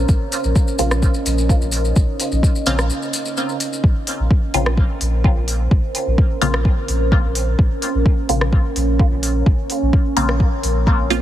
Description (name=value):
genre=dub techno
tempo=128 BPM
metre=4/4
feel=straight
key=Bb minor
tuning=A4 = 439 Hz
part: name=deep dark ambient pad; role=sustained chords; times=0.0-11.2 s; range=Db4 to Eb5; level=-24 LUFS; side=right 2 dB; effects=chorus, built-in reverb, sidechain pumping
part: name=soft dub sub bass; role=bass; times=0.0-11.2 s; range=Bb1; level=-20 LUFS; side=equal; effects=sidechain pumping
part: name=electronic kick drum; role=drums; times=0.1-11.0 s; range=none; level=-15 LUFS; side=equal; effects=none
part: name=maracas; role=percussion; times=0.1-3.8 s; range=none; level=-28 LUFS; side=left 4 dB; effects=none
part: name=deep house drum kit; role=drums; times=0.3-11.2 s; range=hi-hat, rim click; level=-25 LUFS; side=equal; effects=none
part: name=filtered dub chord stab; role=stabs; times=0.8-11.2 s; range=Db3 to F4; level=-24 LUFS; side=left 1 dB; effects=phaser, vintage 12-bit sampler grit, sidechain pumping, dub echo
room=digital ambience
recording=heavily compressed radio sound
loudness=-15 LUFS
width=side -12 dB against mid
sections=0.0-3.8 A section; 3.8-11.2 A section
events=filter sweep on synth stab 0.0-3.8; break 2.9-3.8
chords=0.0 Bbmadd9